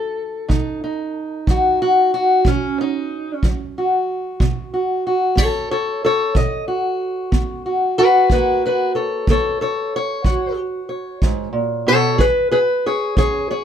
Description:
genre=acoustic country blues, solo or duo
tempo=62 BPM (dotted quarters)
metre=12/8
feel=straight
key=unclear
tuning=A4 = 440 Hz
part: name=fingerpicked steel-string acoustic guitar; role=melody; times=0.0-13.6 s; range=F#2 to D#5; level=-17 LUFS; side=equal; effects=none
part: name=kick drum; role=drums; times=0.5-13.3 s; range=none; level=-18 LUFS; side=right 1 dB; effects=none
room=light reverb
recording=none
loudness=-16 LUFS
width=side -9 dB against mid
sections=0.0-13.6 A section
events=steel-string acoustic guitar solo 0.0-13.6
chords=0.0 B; 8.3 F#; 12.2 C#5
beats=| 0.50 1.47 2.45 3.42 | 4.40 5.37 6.35 7.32 | 8.30 9.28 10.25 11.22 | 12.20 13.18

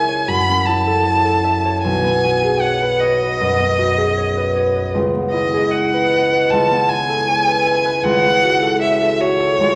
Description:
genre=classical, impressionist duo for violin and harp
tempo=77 BPM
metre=4/4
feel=rubato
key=unclear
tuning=A4 = 442 Hz
part: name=clear violin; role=melody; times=0.0-9.8 s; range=C#5 to B5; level=-20 LUFS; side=equal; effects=none
part: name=concert harp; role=accompaniment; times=0.0-9.8 s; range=B1 to E5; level=-19 LUFS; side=equal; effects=none
room=wet recital hall reverb, RT60 1.6 s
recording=vinyl crackle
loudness=-17 LUFS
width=mono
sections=0.0-9.8 A section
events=none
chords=0.3 F#m7; 1.8 B69; 4.9 C#m11; 6.5 Amaj9/C#; 8.0 F#m7/C#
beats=0.28 1.06 | 1.83 2.62 3.40 4.17 | 4.94 5.73 6.51 7.28 | 8.04 8.82 9.60

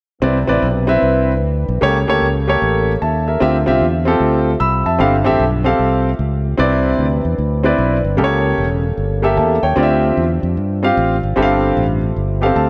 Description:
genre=uptempo gospel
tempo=151 BPM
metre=4/4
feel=swing 65% on 8ths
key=C major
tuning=A4 = 440 Hz
part: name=warm concert grand piano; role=accompaniment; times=0.2-12.7 s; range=G2 to E6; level=-18 LUFS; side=equal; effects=none
part: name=dark French horn section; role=sustained chords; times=0.2-12.7 s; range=A3 to E5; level=-29 LUFS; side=equal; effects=none
part: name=fingered electric bass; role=bass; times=0.2-12.7 s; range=E1 to G2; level=-20 LUFS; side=equal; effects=none
room=moderate lush hall reverb, RT60 2.6 s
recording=none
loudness=-16 LUFS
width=mono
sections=0.2-6.6 A section; 6.6-12.7 B section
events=grand piano fill 12.4-12.7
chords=0.2 Cmaj9; 1.8 A7b9/C#; 3.4 Dm11; 5.0 G9sus4; 6.6 Cmaj9; 8.2 A7b9; 9.8 Dm11; 11.4 G9sus4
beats=| 0.22 0.62 1.02 1.42 | 1.82 2.21 2.61 3.01 | 3.41 3.81 4.20 4.60 | 5.00 5.40 5.79 6.19 | 6.59 6.99 7.39 7.78 | 8.18 8.58 8.98 9.37 | 9.77 10.17 10.57 10.96 | 11.36 11.76 12.16 12.55

